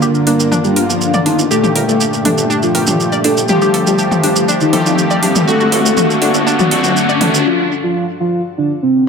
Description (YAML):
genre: melodic techno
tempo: 121 BPM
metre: 4/4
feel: straight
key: unclear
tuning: A4 = 440 Hz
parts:
  - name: soft octave-layered synth lead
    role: melody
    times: 0.0-9.0 s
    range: C4 to Bb4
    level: -17 LUFS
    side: equal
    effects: chorus, phaser, vintage 12-bit sampler grit, analog delay
  - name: soft supersaw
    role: second line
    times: 0.0-7.4 s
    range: Eb3 to Bb3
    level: -21 LUFS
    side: right 1 dB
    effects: cassette tape, analog delay
  - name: evolving wavetable pad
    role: sustained chords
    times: 0.0-7.4 s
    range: F4 to Bb5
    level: -27 LUFS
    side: right 3 dB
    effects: none
  - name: analog pluck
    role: arpeggios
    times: 0.0-7.2 s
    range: D4 to D5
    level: -20 LUFS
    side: right 1 dB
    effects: chorus, analog delay
  - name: analog synth brass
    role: stabs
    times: 0.0-7.4 s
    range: Bb2 to G4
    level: -17 LUFS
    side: left 2 dB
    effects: chorus, analog delay
  - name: bowed-like drone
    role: drone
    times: 0.0-7.5 s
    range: G2 to D3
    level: -29 LUFS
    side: right 1 dB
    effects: built-in reverb
  - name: maracas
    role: percussion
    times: 0.0-7.4 s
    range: none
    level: -21 LUFS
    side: right 5 dB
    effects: analog delay
  - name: granular cloud pad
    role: texture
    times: 0.0-7.5 s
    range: C4 to A5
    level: -23 LUFS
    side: left 1 dB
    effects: built-in reverb
  - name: dark detuned saw bass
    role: bass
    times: 0.3-7.4 s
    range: G1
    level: -24 LUFS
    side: equal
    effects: none
  - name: house drum kit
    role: drums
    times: 0.3-7.3 s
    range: hi-hat, toms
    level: -18 LUFS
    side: left 1 dB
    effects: studio ambience
  - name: riser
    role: sound effects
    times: 4.0-7.5 s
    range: none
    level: -20 LUFS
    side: left 1 dB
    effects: none
room: wet spring reverb, RT60 1.7 s, digital ambience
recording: echo-heavy mix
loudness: -11 LUFS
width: side -6 dB against mid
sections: 0.0-9.1 A section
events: build-up 0.0-9.1; filter sweep on analog polysynth 0.0-9.1; riser 4.0-7.5; break 7.5-9.1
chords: 0.0 Bb/G; 1.5 Gmadd9; 3.5 Fadd9/G; 5.5 D/G; 7.5 N.C.